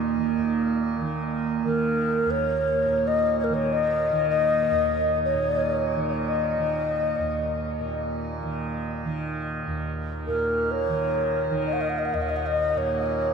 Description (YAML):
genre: world meditative, free-time meditation music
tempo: free time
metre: none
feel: none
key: unclear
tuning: A4 = 436 Hz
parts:
  - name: tanpura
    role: drone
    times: 0.0-13.3 s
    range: Eb2 to Eb3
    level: -29 LUFS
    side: right 2 dB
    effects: stereo widening
  - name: bronze singing bowl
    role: texture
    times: 0.0-0.8 s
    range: Bb3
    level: -31 LUFS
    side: right 6 dB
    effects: shimmer reverb
  - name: mellow wooden-headed alto flute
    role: melody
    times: 1.6-13.3 s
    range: Bb4 to Gb5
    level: -24 LUFS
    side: left 2 dB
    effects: shimmer reverb, diffuse ambient delay
room: wet huge ambient reverb, RT60 9.0 s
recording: dark, warm production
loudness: -23 LUFS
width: side -6 dB against mid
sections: 0.4-13.3 A section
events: none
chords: none